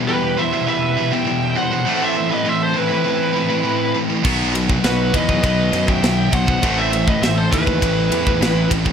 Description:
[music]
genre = heavy metal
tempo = 101 BPM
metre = 4/4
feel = straight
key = unclear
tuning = A4 = 440 Hz
[part]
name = fuzz guitar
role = riff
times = 0.0-8.9 s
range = A2 to F#4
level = -23 LUFS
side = equal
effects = distortion
[part]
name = heavy high-gain guitar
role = riff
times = 0.0-8.9 s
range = E2 to B3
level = -24 LUFS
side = right 9 dB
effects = distortion
[part]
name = high-gain distorted guitar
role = riff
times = 0.0-8.9 s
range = E2 to B3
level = -23 LUFS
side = left 8 dB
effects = distortion
[part]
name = high-gain lead guitar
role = melody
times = 0.1-8.7 s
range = B4 to G5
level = -21 LUFS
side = right 2 dB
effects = distortion
[part]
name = high-gain lead guitar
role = second line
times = 0.1-8.7 s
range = E4 to E5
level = -27 LUFS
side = right 4 dB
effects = distortion
[part]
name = fuzz fingered electric bass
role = bass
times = 4.2-8.9 s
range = A1 to F#2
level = -23 LUFS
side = equal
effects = overdrive
[part]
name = tight metal drum kit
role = drums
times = 4.2-8.9 s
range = crash cymbal, kick drum, ride cymbal, snare drum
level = -21 LUFS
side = equal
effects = none
[sound]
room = studio reverb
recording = none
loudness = -15 LUFS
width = side -7 dB against mid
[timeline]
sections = 0.0-8.9 A section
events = none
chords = 0.0 Em; 1.9 Am; 4.2 B; 6.6 Am

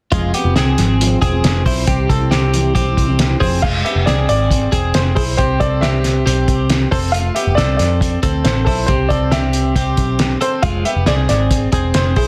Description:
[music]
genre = jangly indie pop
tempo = 137 BPM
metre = 4/4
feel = straight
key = unclear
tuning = A4 = 442 Hz
[part]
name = fingerpicked steel-string acoustic guitar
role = accompaniment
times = 0.1-3.6 s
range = C3 to F4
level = -25 LUFS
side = equal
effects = plate reverb
[part]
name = twelve-string electric guitar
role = arpeggios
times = 0.1-12.3 s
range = Ab3 to C5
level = -22 LUFS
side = equal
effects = plate reverb
[part]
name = vintage muted picked electric bass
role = bass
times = 0.1-12.3 s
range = E1 to F2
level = -20 LUFS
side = equal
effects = none
[part]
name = cloth-damped thuddy drum kit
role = drums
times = 0.1-12.3 s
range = crash cymbal, hi-hat, kick drum, snare drum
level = -21 LUFS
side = equal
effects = none
[part]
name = warm upright piano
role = melody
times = 3.4-12.3 s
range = Ab4 to F5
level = -23 LUFS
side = equal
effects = plate reverb, delay
[sound]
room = moderate studio reverb, RT60 0.8 s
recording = dense, heavily limited modern master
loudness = -16 LUFS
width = mono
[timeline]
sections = 0.1-3.6 A section; 3.6-12.3 B section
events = none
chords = 0.1 Fm; 1.9 C; 3.4 Fm; 5.4 C; 6.9 F; 8.9 C; 10.6 Fm

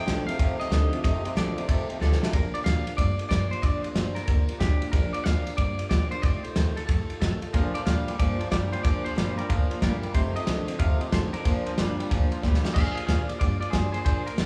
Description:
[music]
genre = rockabilly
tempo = 184 BPM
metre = 4/4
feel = swing 65% on 8ths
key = Bb major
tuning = A4 = 440 Hz
[part]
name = clean electric guitar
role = melody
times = 0.0-14.5 s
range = F4 to G5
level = -36 LUFS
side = equal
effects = spring reverb
[part]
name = picked steel-string acoustic guitar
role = accompaniment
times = 0.0-14.5 s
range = F2 to F4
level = -36 LUFS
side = equal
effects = none
[part]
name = twangy electric guitar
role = riff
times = 0.0-2.3, 7.5-12.7 s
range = F2 to G3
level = -35 LUFS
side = equal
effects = none
[part]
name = upright bass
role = bass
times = 0.1-14.5 s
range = F1 to G2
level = -30 LUFS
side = equal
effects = none
[part]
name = cloth-damped thuddy drum kit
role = drums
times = 0.1-14.5 s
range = crash cymbal, kick drum, ride cymbal, snare drum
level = -29 LUFS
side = equal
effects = none
[sound]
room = moderate large studio reverb, RT60 0.7 s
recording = band playing live in one room, small room ambience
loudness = -26 LUFS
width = mono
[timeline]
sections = 0.0-2.3 A section; 2.3-12.8 B section; 12.8-14.5 C section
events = drum fill 2.0-2.3, 12.4-12.8; clean electric guitar solo 12.8-14.5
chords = 0.0 F7; 2.3 Bb; 6.2 F7; 7.5 Bb; 10.1 F7; 11.4 Bb

